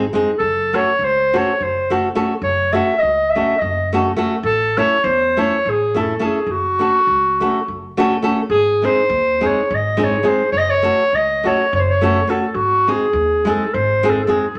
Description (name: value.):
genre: balkan folk, Balkan wedding band.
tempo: 207 BPM (eighths).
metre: 7/8.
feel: straight.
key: F# dorian sharp4.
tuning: A4 = 442 Hz.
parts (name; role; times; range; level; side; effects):
nylon-string guitar; accompaniment; 0.0-14.5 s; G#3 to A4; -21 LUFS; equal; none.
upright bass; bass; 0.0-14.6 s; F#1 to E2; -28 LUFS; equal; none.
warm clarinet; melody; 0.4-14.6 s; F#4 to E5; -18 LUFS; equal; none.
room: wet large studio reverb, RT60 0.9 s.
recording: none.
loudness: -17 LUFS.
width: mono.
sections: 0.0-8.5 A section; 8.5-14.6 B section.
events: none.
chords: 0.4 F#m; 4.4 A; 6.5 F#m; 8.5 G#; 10.5 F#m; 12.5 G#.